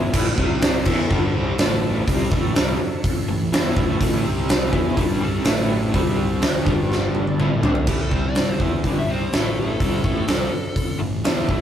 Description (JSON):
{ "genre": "blues rock power trio and southern rock", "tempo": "124 BPM", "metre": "4/4", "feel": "straight", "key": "unclear", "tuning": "A4 = 440 Hz", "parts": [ { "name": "overdriven electric guitar", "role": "riff", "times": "0.0-11.6 s", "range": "G2 to E4", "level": "-24 LUFS", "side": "equal", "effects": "tremolo" }, { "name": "fuzz fingered electric bass", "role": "bass", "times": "0.0-11.6 s", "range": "G1 to E2", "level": "-27 LUFS", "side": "equal", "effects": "overdrive" }, { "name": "huge arena drum kit", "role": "drums", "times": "0.1-11.6 s", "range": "crash cymbal, hi-hat, kick drum, snare drum, toms", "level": "-20 LUFS", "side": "equal", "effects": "none" }, { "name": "overdriven tonewheel organ", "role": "sustained chords", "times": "0.4-7.9 s", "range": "C4 to D5", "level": "-36 LUFS", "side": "right 2 dB", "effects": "none" }, { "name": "dark smooth lead guitar", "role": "melody", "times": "7.9-11.0 s", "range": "G4 to E5", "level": "-30 LUFS", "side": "left 2 dB", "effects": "overdrive" } ], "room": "light reverb", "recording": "rough rehearsal-room recording", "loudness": "-18 LUFS", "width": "side -10 dB against mid", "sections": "0.1-7.9 A section; 7.9-11.6 B section", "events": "drum fill 6.9-7.9; lead electric guitar solo 7.9-11.6", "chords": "0.1 A5; 0.4 C5; 0.9 A; 4.2 C5; 4.7 A; 5.9 C5; 6.4 D5; 6.7 G5; 7.4 A; 7.9 A5; 8.1 C5; 8.6 A5" }